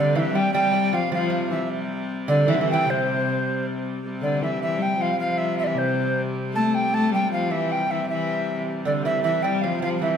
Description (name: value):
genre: medieval dance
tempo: 104 BPM (dotted quarters)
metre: 6/8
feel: straight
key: C major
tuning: A4 = 438 Hz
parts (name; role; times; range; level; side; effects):
- mellow tenor recorder; melody; 0.0-10.2 s; C5 to A5; -24 LUFS; right 1 dB; none
- lute; second line; 0.0-3.6, 8.9-10.2 s; C3 to G3; -26 LUFS; right 5 dB; none
- rich viola da gamba; second line; 0.0-10.2 s; C3 to A3; -26 LUFS; left 4 dB; none
- clear hurdy-gurdy; drone; 0.0-10.2 s; C3 to G3; -29 LUFS; equal; none
room: wet recital hall reverb, RT60 1.4 s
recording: none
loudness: -21 LUFS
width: side -7 dB against mid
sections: 0.0-4.0 A section; 4.0-10.2 B section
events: none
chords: none